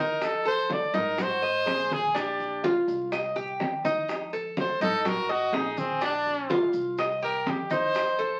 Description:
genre	latin, Cuban son and guajira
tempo	124 BPM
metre	4/4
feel	straight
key	Bb major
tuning	A4 = 442 Hz
part	brilliant trumpet	melody	0.0-8.4 s	C4 to D5	-30 LUFS	equal	none
part	Cuban tres	arpeggios	0.0-8.4 s	D4 to Eb5	-30 LUFS	equal	none
part	upright bass	bass	0.0-8.4 s	Bb1 to Ab2	-47 LUFS	equal	none
part	bongos	percussion	0.2-8.4 s	none	-37 LUFS	equal	none
part	congas	percussion	0.2-8.4 s	none	-38 LUFS	equal	none
part	maracas	percussion	0.2-8.4 s	none	-54 LUFS	equal	none
room	wet studio reverb, RT60 0.5 s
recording	very old 78 rpm record, vinyl crackle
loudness	-27 LUFS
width	mono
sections	0.0-8.4 A section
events	trumpet solo 0.0-8.4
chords	0.2 F7; 1.2 Ab7; 2.2 Bb; 3.1 Cm; 4.1 F7; 5.1 Ab5; 6.0 Bb; 7.0 Cm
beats	| 0.22 0.70 1.19 1.67 | 2.15 2.64 3.12 3.60 | 4.09 4.57 5.05 5.54 | 6.02 6.51 6.99 7.47 | 7.96

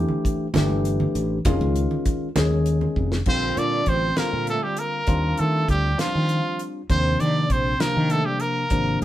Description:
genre	electric jazz fusion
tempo	66 BPM (dotted quarters)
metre	6/8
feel	straight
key	Bb major from 3.3 s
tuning	A4 = 441 Hz
part	barky tine electric piano	accompaniment	0.0-9.0 s	C3 to Ab4	-26 LUFS	left 2 dB	phaser
part	fretless electric bass	bass	0.0-9.0 s	F1 to Eb3	-23 LUFS	equal	none
part	congas	percussion	0.1-3.0 s	none	-28 LUFS	right 3 dB	none
part	damped 70s drum kit	drums	0.2-9.0 s	crash cymbal, hi-hat, kick drum, snare drum	-26 LUFS	equal	none
part	brilliant trumpet	melody	3.3-9.0 s	F4 to D5	-24 LUFS	right 1 dB	none
part	mellow trombone	second line	3.3-9.0 s	F3 to D4	-31 LUFS	right 5 dB	none
room	moderate studio reverb, RT60 0.6 s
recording	band playing live in one room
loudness	-20 LUFS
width	side -13 dB against mid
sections	0.0-3.3 A section; 3.3-9.0 B section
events	drum fill 3.0-3.3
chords	0.0 A7sus4; 1.5 Dbadd9/F; 3.3 Bbmaj13; 5.1 Ebmaj9; 6.9 Cm9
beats	0.54 | 1.45 2.36 | 3.27 4.17 | 5.08 5.99 | 6.90 7.81 | 8.72

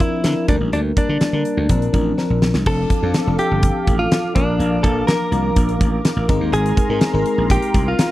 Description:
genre	1980s-style pop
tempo	124 BPM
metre	4/4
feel	straight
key	unclear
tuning	A4 = 441 Hz
part	direct-recorded clean electric guitar	melody	0.0-8.1 s	D4 to Bb4	-22 LUFS	equal	none
part	FM electric piano with soft pad layer	accompaniment	0.0-8.1 s	F3 to Bb4	-22 LUFS	left 3 dB	chorus
part	huge arena drum kit	drums	0.0-8.1 s	crash cymbal, hi-hat, kick drum, snare drum	-19 LUFS	equal	none
part	slap bass	bass	0.2-7.9 s	F1 to D3	-20 LUFS	equal	none
part	warm analog pad	sustained chords	2.7-8.1 s	A4 to D6	-27 LUFS	right 1 dB	chorus
room	little or no reverb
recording	dry, close 1970s-style studio recording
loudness	-15 LUFS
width	side -15 dB against mid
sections	0.0-2.7 A section; 2.7-8.1 B section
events	drum fill 2.2-2.7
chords	0.5 Gm; 1.7 Bbadd9; 2.7 F6; 4.4 Bb; 6.3 Abadd9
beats	0.24 | 0.73 1.21 1.69 2.18 | 2.66 3.15 3.63 4.11 | 4.60 5.08 5.57 6.05 | 6.53 7.02 7.50 7.98

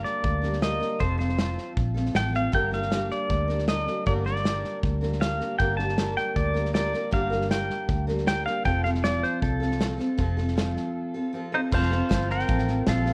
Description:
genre	honky-tonk and classic country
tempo	157 BPM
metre	4/4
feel	straight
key	G minor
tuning	A4 = 436 Hz
part	pedal steel guitar	melody	0.0-13.1 s	Eb4 to A5	-31 LUFS	equal	none
part	picked steel-string acoustic guitar	accompaniment	0.0-13.1 s	G2 to Bb4	-32 LUFS	equal	none
part	vintage muted fingered electric bass	bass	0.0-13.1 s	F1 to D2	-31 LUFS	equal	none
part	natural country drum kit	drums	0.0-13.1 s	crash cymbal, hi-hat, kick drum, snare drum	-32 LUFS	equal	none
part	pedal steel guitar	sustained chords	11.7-13.1 s	C5 to A5	-36 LUFS	equal	none
room	moderate large studio reverb, RT60 1.4 s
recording	worn, warbling old tape, cassette tape, warbly pitch drift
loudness	-26 LUFS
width	mono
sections	0.0-11.7 A section; 11.7-13.1 B section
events	break 11.0-11.7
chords	0.0 Gm; 1.0 F; 2.5 Gm; 8.7 F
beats	0.23 0.62 | 1.00 1.38 1.76 2.15 | 2.53 2.91 3.29 3.68 | 4.06 4.44 4.83 5.21 | 5.59 5.98 6.36 6.74 | 7.12 7.51 7.89 8.27 | 8.66 9.04 9.42 9.81 | 10.19 10.57 10.96 11.34 | 11.72 12.11 12.49 12.87

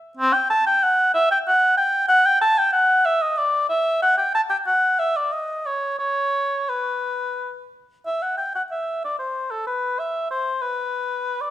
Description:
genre	classical, baroque-style fantasia for unaccompanied oboe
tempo	93 BPM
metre	3/4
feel	rubato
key	E minor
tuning	A4 = 439 Hz
part	warm oboe	solo	0.2-11.5 s	C4 to A5	-19 LUFS	equal	none
room	moderate recital hall reverb, RT60 1.5 s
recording	minimal, uncompressed stereo recording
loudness	-18 LUFS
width	side -13 dB against mid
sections	0.0-8.1 A section; 8.1-11.5 A section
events	none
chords	none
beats	| 0.19 0.83 1.46 | 2.10 2.73 3.37 | 4.01 4.66 5.32 | 6.00 6.69 7.37 | 8.05 8.71 9.35 | 9.99 10.62 11.26

